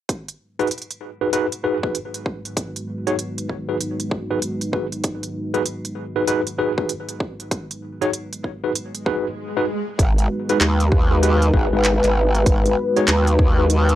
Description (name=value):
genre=glitch hop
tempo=97 BPM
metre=4/4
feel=swing 62% on 16ths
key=G# minor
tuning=A4 = 439 Hz
part: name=dark analog pad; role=sustained chords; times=0.1-14.0 s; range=G#3 to B4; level=-24 LUFS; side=equal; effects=chorus, sidechain pumping
part: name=dubstep drum kit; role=drums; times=0.1-14.0 s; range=handclaps, hi-hat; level=-24 LUFS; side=right 2 dB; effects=small room ambience
part: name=electronic kick drum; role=drums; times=0.1-13.5 s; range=none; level=-21 LUFS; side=equal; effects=high-pass filter on kick, small room ambience
part: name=tine electric piano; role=stabs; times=0.6-13.7 s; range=D#4 to C#5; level=-23 LUFS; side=equal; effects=overdrive, fast stereo tremolo, sidechain pumping, low-pass filter, tape echo
part: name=swell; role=sound effects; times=9.1-10.0 s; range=none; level=-29 LUFS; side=left 1 dB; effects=none
part: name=growl bass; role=bass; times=10.0-14.0 s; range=G#1 to D#2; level=-18 LUFS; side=equal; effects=chorus, tube saturation
room=light reverb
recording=dry, gritty hardware recording, transformer saturation, cassette tape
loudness=-18 LUFS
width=side -13 dB against mid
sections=0.1-10.0 A section; 10.0-14.0 B section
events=swell 9.1-10.0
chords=0.1 G#m7